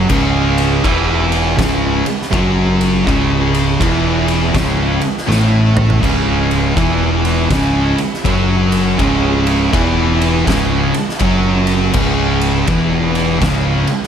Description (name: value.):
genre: stoner and doom metal.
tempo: 81 BPM.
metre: 4/4.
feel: swing 64% on 8ths.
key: C# minor.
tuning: A4 = 439 Hz.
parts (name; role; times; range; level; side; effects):
thick fuzz guitar; riff; 0.0-13.9 s; C#2 to A3; -19 LUFS; left 9 dB; distortion.
thick fuzz guitar; riff; 0.0-13.9 s; C#2 to A3; -17 LUFS; right 7 dB; distortion.
tight distorted guitar; riff; 0.0-13.9 s; C#2 to A3; -20 LUFS; left 1 dB; distortion.
modern bright picked electric bass; bass; 0.0-13.8 s; C#1 to A1; -19 LUFS; left 1 dB; tube saturation.
oversized low-tuned drum kit; drums; 0.1-14.1 s; crash cymbal, kick drum, ride cymbal, snare drum, toms; -19 LUFS; equal; none.
room: small room ambience.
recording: none.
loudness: -12 LUFS.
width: side -8 dB against mid.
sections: 0.0-14.1 A section.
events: drum fill 5.3-6.0.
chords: 0.0 C#m.